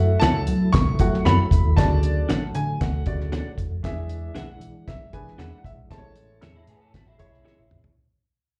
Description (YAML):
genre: uptempo 1960s-style soul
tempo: 116 BPM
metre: 4/4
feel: straight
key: A major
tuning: A4 = 440 Hz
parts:
  - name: warm baby grand piano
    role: melody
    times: 0.0-7.7 s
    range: E5 to C#6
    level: -31 LUFS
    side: equal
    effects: slapback echo
  - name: warm upright piano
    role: accompaniment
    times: 0.0-7.6 s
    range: A2 to F#5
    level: -32 LUFS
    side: equal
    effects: slapback echo
  - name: tonewheel organ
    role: sustained chords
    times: 0.0-8.0 s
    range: E3 to E4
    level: -37 LUFS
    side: equal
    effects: slow rotary speaker, overdrive, chorus vibrato
  - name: vintage muted fingered electric bass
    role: bass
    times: 0.0-7.9 s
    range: A1 to F#3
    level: -25 LUFS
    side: equal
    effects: none
  - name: clean electric guitar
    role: stabs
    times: 0.2-7.6 s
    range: D4 to F#5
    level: -31 LUFS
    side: equal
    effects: slapback echo
  - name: cloth-damped thuddy drum kit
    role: drums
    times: 0.2-8.0 s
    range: hi-hat, kick drum, snare drum, toms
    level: -25 LUFS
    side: equal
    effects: none
  - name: electric guitar through a small old amp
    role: riff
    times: 6.6-7.8 s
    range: G#3 to A4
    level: -65 LUFS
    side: equal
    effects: ensemble chorus, slapback echo
room: light reverb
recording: live gig heard through the venue's PA, club reverb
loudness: -22 LUFS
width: mono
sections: 0.0-8.0 A section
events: fade-out 0.0-8.0; drum fill 7.5-8.0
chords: 0.0 F#m7; 1.8 Dmaj7; 3.8 E7; 5.9 Amaj7